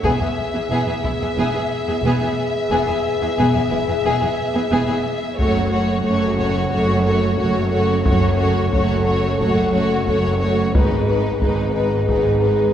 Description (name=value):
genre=cinematic, epic orchestral film score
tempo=90 BPM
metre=4/4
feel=straight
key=F# dorian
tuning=A4 = 440 Hz
part: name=warm symphonic violin section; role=melody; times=0.0-12.7 s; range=B4 to E5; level=-26 LUFS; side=left 3 dB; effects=none
part: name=warm symphonic violin section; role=second line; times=0.0-12.7 s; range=D#4 to G#4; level=-25 LUFS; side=left 2 dB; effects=none
part: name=rich studio viola section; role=accompaniment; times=0.0-12.7 s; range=G#3 to B3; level=-24 LUFS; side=right 1 dB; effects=none
part: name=mellow French horn section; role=sustained chords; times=0.0-12.7 s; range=B3 to A4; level=-23 LUFS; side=left 2 dB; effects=none
part: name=rich symphonic cello section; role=bass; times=0.0-12.7 s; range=E2 to G#2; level=-24 LUFS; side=right 2 dB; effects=none
part: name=rich symphonic double bass section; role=bass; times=0.0-12.7 s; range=E1 to G#1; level=-24 LUFS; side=right 2 dB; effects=none
part: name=taiko ensemble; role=drums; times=0.0-1.4, 5.4-12.7 s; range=none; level=-24 LUFS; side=equal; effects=none
room=wet concert hall reverb, RT60 2.1 s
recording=recorded in a church or concert hall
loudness=-16 LUFS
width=side -10 dB against mid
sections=0.0-12.7 A section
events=build-up 0.0-12.7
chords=0.0 E; 5.4 F#m; 10.7 G#m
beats=| 0.04 0.71 1.37 2.04 | 2.71 3.38 4.04 4.71 | 5.38 6.05 6.72 7.38 | 8.05 8.72 9.40 10.07 | 10.74 11.41 12.08